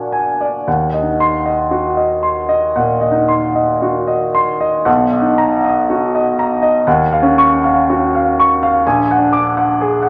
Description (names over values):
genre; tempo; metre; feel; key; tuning
classical, impressionist solo piano; 53-65 BPM; 4/4; rubato; Eb minor; A4 = 440 Hz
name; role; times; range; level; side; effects
warm baby grand piano; solo; 0.0-10.1 s; Bb1 to D6; -14 LUFS; equal; none
room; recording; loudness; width
wet recital hall reverb, RT60 1.6 s; none; -14 LUFS; mono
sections
0.0-10.1 A section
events
none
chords
0.0 Bbaug7; 0.7 Ebm6; 4.9 Bmaj7; 6.9 Ebm9; 8.8 Bbaug7